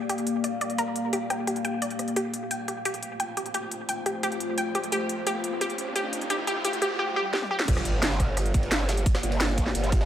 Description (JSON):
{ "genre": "dark technical drum and bass", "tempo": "174 BPM", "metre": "4/4", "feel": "straight", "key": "G minor", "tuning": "A4 = 440 Hz", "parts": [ { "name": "deep dark ambient pad", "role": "sustained chords", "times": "0.0-10.1 s", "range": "A3 to F5", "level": "-32 LUFS", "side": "left 2 dB", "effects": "chorus, built-in reverb, sidechain pumping" }, { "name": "wide unison pluck", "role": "arpeggios", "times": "0.1-7.6 s", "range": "G4 to G5", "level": "-29 LUFS", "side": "equal", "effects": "cassette tape, sidechain pumping, dub echo" }, { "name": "drum and bass drum kit", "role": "drums", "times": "0.1-10.0 s", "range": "crash cymbal, hi-hat, rim click, snare drum, toms", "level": "-30 LUFS", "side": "equal", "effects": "studio ambience" }, { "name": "riser, swell and impact", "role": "sound effects", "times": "4.0-9.1 s", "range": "none", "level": "-36 LUFS", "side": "right 1 dB", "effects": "none" }, { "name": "growl bass", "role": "bass", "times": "7.7-10.1 s", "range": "G1", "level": "-26 LUFS", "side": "equal", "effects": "chorus, overdrive, sidechain pumping" }, { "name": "electronic kick drum", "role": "drums", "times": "7.7-10.0 s", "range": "none", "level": "-24 LUFS", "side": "equal", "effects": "studio ambience" }, { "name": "jungle sampler-style drum kit", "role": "drums", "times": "7.7-10.1 s", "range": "ride cymbal, snare drum", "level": "-36 LUFS", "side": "right 1 dB", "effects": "high-pass filter on cymbals, studio ambience, high-pass filter on snare, high-pass filter on room" } ], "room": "moderate lush hall reverb, RT60 1.9 s", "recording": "high-pass filter", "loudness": "-25 LUFS", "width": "side -10 dB against mid", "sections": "0.0-7.7 A section; 7.7-10.1 B section", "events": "build-up 0.0-7.7; filter sweep on ambient pad 0.0-7.7; filter sweep on synth arpeggio sound 0.0-7.7; filter sweep 0.0-7.7; riser 4.0-7.0; swell 7.0-7.7; drum fill 7.3-7.7; drop 7.7-10.1; impact 7.7-9.1", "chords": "0.0 Gm7; 2.2 F; 7.7 Gm7" }